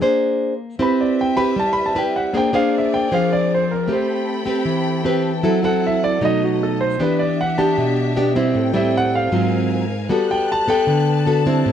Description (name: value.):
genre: bossa nova.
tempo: 155 BPM.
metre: 4/4.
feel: straight.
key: G major.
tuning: A4 = 440 Hz.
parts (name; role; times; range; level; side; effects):
nylon-string guitar; accompaniment; 0.0-11.7 s; Ab2 to C5; -18 LUFS; equal; none.
warm concert grand piano; melody; 0.8-11.2 s; F#4 to B5; -21 LUFS; right 2 dB; none.
warm symphonic string section; sustained chords; 0.8-11.7 s; B3 to F#6; -28 LUFS; left 2 dB; none.
room: moderate booth ambience, RT60 0.3 s.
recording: dry, close 1970s-style studio recording.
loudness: -16 LUFS.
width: side -9 dB against mid.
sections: 0.0-11.7 A section.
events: grand piano solo 0.0-11.7.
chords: 0.0 Bb9; 0.8 Cmaj7; 2.3 Bb9; 3.9 Am9; 5.4 F#m7b5; 6.2 B7; 7.0 Em7; 8.5 Am7; 9.3 Ab13; 10.1 Gmaj9.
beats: 0.01 0.39 | 0.78 1.17 1.56 1.95 | 2.33 2.72 3.11 3.50 | 3.89 4.28 4.66 5.05 | 5.44 5.83 6.22 6.60 | 6.99 7.38 7.77 8.16 | 8.54 8.93 9.32 9.71 | 10.10 10.48 10.87 11.26 | 11.65.